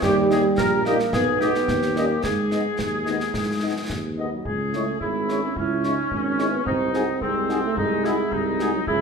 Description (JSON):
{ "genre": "military-style march for wind band", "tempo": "109 BPM", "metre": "2/4", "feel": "straight", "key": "G# minor, C# minor from 4.5 s", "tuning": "A4 = 441 Hz", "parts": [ { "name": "mellow euphonium", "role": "second line", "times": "0.0-9.0 s", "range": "F#3 to E4", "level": "-24 LUFS", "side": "right 3 dB", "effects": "none" }, { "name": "mellow woodwind section", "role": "second line", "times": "0.0-9.0 s", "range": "B#3 to A#4", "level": "-26 LUFS", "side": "left 3 dB", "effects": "none" }, { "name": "mellow tuba", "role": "bass", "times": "0.0-9.0 s", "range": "G#1 to G#2", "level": "-27 LUFS", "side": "right 2 dB", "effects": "none" }, { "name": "concert snare drum, clash cymbals and concert bass drum", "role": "drums", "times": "0.0-9.0 s", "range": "none", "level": "-32 LUFS", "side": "left 1 dB", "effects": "none" }, { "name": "dark trumpet section", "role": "melody", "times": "0.3-8.7 s", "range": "G#4 to D#5", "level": "-33 LUFS", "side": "left 1 dB", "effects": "none" }, { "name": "dark French horn section", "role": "accompaniment", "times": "0.3-8.7 s", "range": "G3 to F#4", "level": "-31 LUFS", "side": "left 6 dB", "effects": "none" } ], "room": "wet large studio reverb, RT60 1.2 s", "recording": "minimal, uncompressed stereo recording", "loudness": "-20 LUFS", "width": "side -5 dB against mid", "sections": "0.0-4.5 A section; 4.5-9.0 B section", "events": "none", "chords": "0.0 D#; 1.1 G#m/B; 1.7 D#7; 2.2 G#m; 4.5 C#m; 6.7 G#7/B#", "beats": "| 0.03 0.58 | 1.14 1.69 | 2.24 2.79 | 3.35 3.90 | 4.45 5.00 | 5.56 6.11 | 6.66 7.21 | 7.77 8.32 | 8.87" }